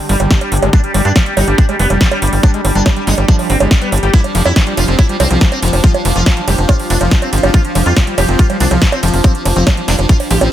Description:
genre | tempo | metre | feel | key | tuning
psychedelic trance | 141 BPM | 4/4 | straight | unclear | A4 = 440 Hz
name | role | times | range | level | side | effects
sitar | melody | 0.0-10.5 s | D3 to G4 | -20 LUFS | equal | phaser, sidechain pumping, tape echo
evolving wavetable pad | sustained chords | 0.0-10.5 s | G3 to D4 | -23 LUFS | right 2 dB | chorus, built-in reverb, sidechain pumping
airy breathy pad | texture | 0.0-10.5 s | F4 to G5 | -24 LUFS | left 1 dB | chorus, sidechain pumping
overdriven acid bass | riff | 0.1-10.5 s | E3 to G4 | -21 LUFS | moving between left 8 dB and right 7 dB | distortion, auto-pan, sidechain pumping, tape echo
tight sequencer bass | bass | 0.1-10.5 s | F1 to G2 | -14 LUFS | equal | none
big-room dance drum kit | drums | 0.1-10.5 s | bongos, hi-hat, ride cymbal, snare drum | -18 LUFS | right 3 dB | none
electronic kick drum | drums | 0.3-10.2 s | none | -10 LUFS | equal | none
room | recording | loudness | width
digital ambience | none | -10 LUFS | side -12 dB against mid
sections
0.0-10.5 A section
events
none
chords
0.0 G5; 4.1 F5

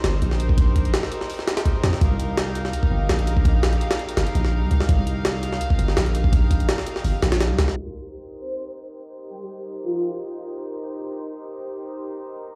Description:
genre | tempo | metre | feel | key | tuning
drum and bass, jungle | 167 BPM | 4/4 | straight | C minor | A4 = 440 Hz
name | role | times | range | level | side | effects
rich studio string section | sustained chords | 0.0-12.6 s | Eb4 to F5 | -34 LUFS | equal | low-pass filter
long sustained 808-style bass | bass | 0.0-7.7 s | G1 to F2 | -24 LUFS | equal | tube saturation
jungle sampler-style drum kit | drums | 0.0-7.8 s | hi-hat, kick drum, snare drum | -24 LUFS | equal | studio reverb
breathy flute-like synth lead | melody | 8.4-10.1 s | F4 to C5 | -32 LUFS | equal | ensemble chorus, dub echo
room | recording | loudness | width
light reverb | played on a big sound system in a bare room, large studio reverb, vinyl crackle, low-pass filter | -22 LUFS | mono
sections
0.0-7.8 A section; 7.8-12.6 B section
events
filter sweep on string section 7.8-12.6; filter sweep 7.8-12.6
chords
0.0 Cm7

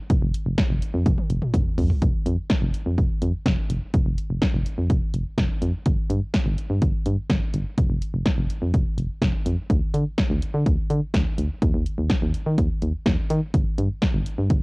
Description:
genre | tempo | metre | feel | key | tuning
synth-pop | 125 BPM | 4/4 | straight | unclear | A4 = 440 Hz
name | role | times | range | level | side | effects
solid FM bass | bass | 0.1-14.6 s | F1 to Eb3 | -23 LUFS | equal | none
punchy analog drum machine | drums | 0.1-14.6 s | hi-hat, kick drum, snare drum, toms | -23 LUFS | equal | cassette tape
room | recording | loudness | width
little or no reverb | home recording on cassette | -21 LUFS | side -28 dB against mid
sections
0.0-2.0 A section; 2.0-5.9 B section; 5.9-14.6 C section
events
drum fill 1.1-2.0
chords
none

